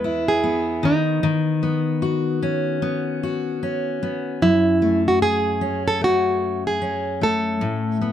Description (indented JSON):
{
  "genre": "pop",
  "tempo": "75 BPM",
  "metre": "4/4",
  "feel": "swing 60% on 16ths",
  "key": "unclear",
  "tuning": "A4 = 441 Hz",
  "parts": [
    { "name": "nylon-string guitar", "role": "melody", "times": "0.0-8.1 s", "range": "D#4 to B4", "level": "-21 LUFS", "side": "right 2 dB", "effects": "plate reverb" },
    { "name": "fingerpicked steel-string acoustic guitar", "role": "accompaniment", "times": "0.0-8.1 s", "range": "E2 to G#4", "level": "-22 LUFS", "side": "left 3 dB", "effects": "none" }
  ],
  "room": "moderate studio ambience, RT60 0.5 s",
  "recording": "none",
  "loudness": "-19 LUFS",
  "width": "side -10 dB against mid",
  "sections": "0.0-8.1 A section",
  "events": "none",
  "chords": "0.0 E; 0.8 Badd9; 4.4 F#madd9; 7.6 Aadd9",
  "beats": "0.43 | 1.23 2.03 2.83 3.63 | 4.43 5.22 6.02 6.82 | 7.62"
}